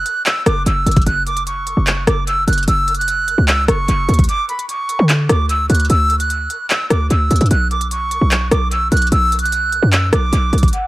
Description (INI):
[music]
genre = hip hop, trap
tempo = 149 BPM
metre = 4/4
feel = half-time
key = unclear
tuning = A4 = 440 Hz
[part]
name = bright reedy concert flute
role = melody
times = 0.0-10.9 s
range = F#5 to F#6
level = -18 LUFS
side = right 2 dB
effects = low-pass filter, dub echo
[part]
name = short 808-style bass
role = bass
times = 0.0-10.7 s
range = F#1 to D3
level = -16 LUFS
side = equal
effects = none
[part]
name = trap drum kit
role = drums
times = 0.1-10.8 s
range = handclaps, hi-hat, kick drum, rim click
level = -19 LUFS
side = equal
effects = overdrive, dub echo
[sound]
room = little or no reverb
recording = echo-heavy mix, vinyl crackle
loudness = -13 LUFS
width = side -18 dB against mid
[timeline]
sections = 0.0-10.7 A section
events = break 4.3-4.7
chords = 0.0 F#5; 4.3 N.C.; 7.5 Bm